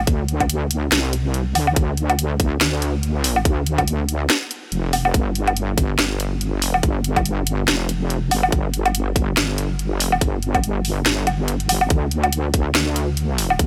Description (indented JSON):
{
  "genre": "deep dubstep",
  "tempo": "142 BPM",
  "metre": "4/4",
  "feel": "swing 57% on 16ths, half-time",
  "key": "D minor",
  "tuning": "A4 = 440 Hz",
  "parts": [
    { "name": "wobble bass", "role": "bass", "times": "0.0-13.7 s", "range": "F1 to D2", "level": "-23 LUFS", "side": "equal", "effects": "chorus" },
    { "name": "electronic kick drum", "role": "drums", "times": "0.1-13.7 s", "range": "none", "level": "-22 LUFS", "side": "equal", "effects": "none" },
    { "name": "garage drum kit", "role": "drums", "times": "0.1-13.7 s", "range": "hi-hat, snare drum, woodblock", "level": "-23 LUFS", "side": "equal", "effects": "none" }
  ],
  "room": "digital ambience",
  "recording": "none",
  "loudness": "-20 LUFS",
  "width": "mono",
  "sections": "0.0-13.7 A section",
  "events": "none",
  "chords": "none"
}